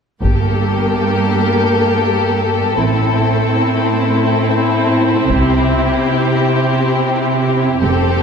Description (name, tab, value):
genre	cinematic, epic orchestral film score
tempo	free time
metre	none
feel	none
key	G dorian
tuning	A4 = 440 Hz
part	rich symphonic violin section	melody	0.2-8.2 s	G4 to A4	-20 LUFS	left 6 dB	none
part	clear symphonic violin section	second line	0.2-8.2 s	E4 to G4	-20 LUFS	left 4 dB	none
part	rich symphonic viola section	accompaniment	0.2-8.2 s	Bb3 to C4	-18 LUFS	right 1 dB	none
part	rich symphonic cello section	bass	0.2-8.2 s	F2 to C3	-18 LUFS	right 3 dB	none
part	rich symphonic double bass section	bass	0.2-8.2 s	F1 to C2	-20 LUFS	right 3 dB	none
part	taiko ensemble	drums	0.2-1.5, 5.3-6.5 s	none	-20 LUFS	left 1 dB	none
room	wet concert hall reverb, RT60 2.3 s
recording	none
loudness	-12 LUFS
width	side -6 dB against mid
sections	0.2-8.2 A section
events	build-up 0.2-8.2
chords	0.2 Gmadd9; 2.8 Am; 5.3 C